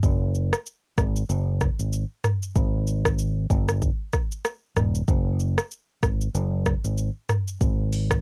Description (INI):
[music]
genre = afrobeats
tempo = 95 BPM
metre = 4/4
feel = swing 58% on 16ths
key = unclear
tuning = A4 = 440 Hz
[part]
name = fingered electric bass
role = bass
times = 0.0-8.2 s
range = Eb1 to Ab1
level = -26 LUFS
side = equal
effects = none
[part]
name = afro-pop drum kit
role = drums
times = 0.0-8.2 s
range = hi-hat, kick drum, rim click, shaker, toms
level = -27 LUFS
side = equal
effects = cassette tape
[sound]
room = light reverb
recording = home recording on cassette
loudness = -25 LUFS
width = mono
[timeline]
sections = 0.0-8.2 A section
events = none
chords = none